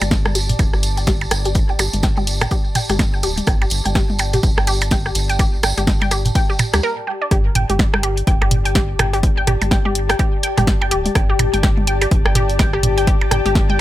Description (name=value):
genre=minimal techno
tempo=125 BPM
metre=4/4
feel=swing 59% on 16ths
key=unclear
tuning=A4 = 440 Hz
part: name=resonant blip pluck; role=riff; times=0.0-13.7 s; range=G4 to G5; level=-23 LUFS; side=equal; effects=chorus, sidechain pumping, dub echo
part: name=round analog bass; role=bass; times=0.0-13.8 s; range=D1 to D2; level=-21 LUFS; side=equal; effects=sidechain pumping
part: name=punchy analog drum machine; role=drums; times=0.0-13.7 s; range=hi-hat, snare drum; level=-22 LUFS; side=left 1 dB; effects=none
part: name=minimal click drum kit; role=percussion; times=0.0-13.8 s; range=percussion blips, rim click, toms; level=-21 LUFS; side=right 1 dB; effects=overdrive, dub echo
part: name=tambourine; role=percussion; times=0.0-6.8 s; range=none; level=-27 LUFS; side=right 3 dB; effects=none
part: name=ethereal airy pad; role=texture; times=0.0-13.8 s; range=G4 to A5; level=-26 LUFS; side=left 5 dB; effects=ensemble chorus, built-in reverb, sidechain pumping
part: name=electronic kick drum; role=drums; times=0.1-13.7 s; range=none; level=-18 LUFS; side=equal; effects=none
room=little or no reverb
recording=none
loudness=-15 LUFS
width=side -14 dB against mid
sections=0.0-7.3 A section; 7.3-13.8 B section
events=filter sweep on synth pluck 0.0-7.3; break 6.8-7.3; drop 7.3-13.8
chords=0.0 G5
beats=0.11 0.59 1.07 | 1.55 2.03 2.51 2.99 | 3.47 3.95 4.43 4.91 | 5.39 5.87 6.35 6.83 | 7.31 7.79 8.27 8.75 | 9.23 9.71 10.19 10.67 | 11.15 11.63 12.11 12.59 | 13.07 13.55